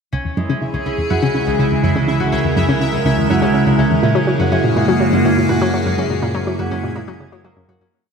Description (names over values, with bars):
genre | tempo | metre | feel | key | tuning
ambient, sequencer-driven space music | 123 BPM | 4/4 | straight | C# dorian | A4 = 438 Hz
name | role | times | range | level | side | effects
evolving wavetable pad | sustained chords | 0.6-7.9 s | C#3 to A#4 | -17 LUFS | right 1 dB | phaser, built-in reverb
concert harp | arpeggios | 0.1-8.1 s | G#3 to F#4 | -24 LUFS | right 1 dB | auto-pan, ping-pong delay
analog pluck | riff | 0.1-7.9 s | C#2 to F#3 | -19 LUFS | left 1 dB | chorus, ping-pong delay
warm sub bass | bass | 0.1-7.9 s | C#2 to F#2 | -30 LUFS | equal | none
pulsing gated texture | texture | 0.4-7.9 s | E4 to E5 | -25 LUFS | equal | chorus, built-in reverb
room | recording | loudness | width
wet lush hall reverb, RT60 2.6 s | dreamy mix soaked in reverb | -14 LUFS | side -6 dB against mid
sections
0.1-7.9 A section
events
fade-in on sub bass 0.1-7.9; filter sweep on synth arpeggio sound 0.1-7.9; fade-out 5.3-7.9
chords
0.1 C#m; 4.0 F#add9